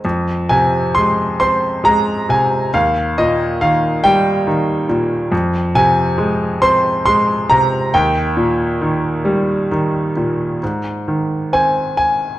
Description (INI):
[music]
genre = classical, lyrical solo piano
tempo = 68 BPM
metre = 3/4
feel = rubato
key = F minor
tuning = A4 = 440 Hz
[part]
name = bright grand piano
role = solo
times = 0.0-12.4 s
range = Eb2 to C6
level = -14 LUFS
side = equal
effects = none
[sound]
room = moderate recital hall reverb, RT60 1.3 s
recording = dark, warm production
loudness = -14 LUFS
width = side -15 dB against mid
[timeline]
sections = 0.0-10.6 A section; 10.6-12.4 B section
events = none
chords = 0.0 Fm; 2.7 Eb; 5.3 Fm; 7.9 Eb; 10.6 Ab